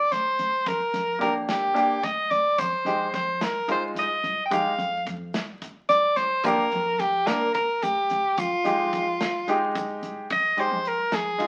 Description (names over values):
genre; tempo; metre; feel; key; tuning
progressive instrumental, band music in an uneven meter; 218 BPM (eighths); 7/8; straight; F dorian; A4 = 440 Hz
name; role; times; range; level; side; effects
edgy soprano saxophone; melody; 0.0-11.5 s; F4 to G5; -26 LUFS; equal; none
upright bass; bass; 0.1-11.5 s; C2 to F3; -41 LUFS; equal; none
modern studio drum kit; drums; 0.1-11.5 s; hi-hat, kick drum, snare drum; -36 LUFS; equal; none
bright grand piano; accompaniment; 1.2-11.5 s; Ab3 to Bb4; -29 LUFS; equal; none
tube shaker; percussion; 2.6-10.0 s; none; -54 LUFS; equal; none
room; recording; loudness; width
wet studio reverb, RT60 0.8 s; very old 78 rpm record, vinyl crackle; -25 LUFS; mono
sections
0.0-10.3 A section; 10.3-11.5 B section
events
none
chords
0.0 Gm; 2.6 Fm7; 6.4 Gm/F; 8.4 Fm7